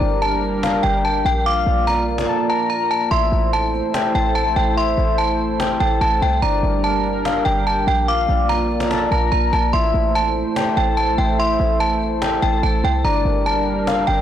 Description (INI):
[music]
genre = hip hop, trap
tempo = 145 BPM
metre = 4/4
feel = half-time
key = A phrygian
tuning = A4 = 440 Hz
[part]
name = metallic FM bell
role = melody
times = 0.0-14.2 s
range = G5 to D6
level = -21 LUFS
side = right 2 dB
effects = chorus, low-pass filter
[part]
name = soft octave-layered synth lead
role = second line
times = 0.0-14.2 s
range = D5 to Bb5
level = -23 LUFS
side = left 6 dB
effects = chorus, tape echo
[part]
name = dark analog pad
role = sustained chords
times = 0.0-14.2 s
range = G3 to D5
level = -23 LUFS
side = right 2 dB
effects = chorus
[part]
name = short 808-style bass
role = bass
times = 0.0-14.2 s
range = G1 to C2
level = -21 LUFS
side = equal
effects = none
[part]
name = cajon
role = drums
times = 0.0-14.1 s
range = none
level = -30 LUFS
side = equal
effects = none
[sound]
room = digital ambience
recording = blown-out, overdriven recording, overdrive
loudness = -16 LUFS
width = side -10 dB against mid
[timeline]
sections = 0.0-3.1 A section; 3.1-14.2 A section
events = drums muted 2.3-3.1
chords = 0.0 Gm; 1.5 Bb; 3.1 Am; 6.4 Gm; 8.1 Bb; 9.7 Am; 13.0 Gm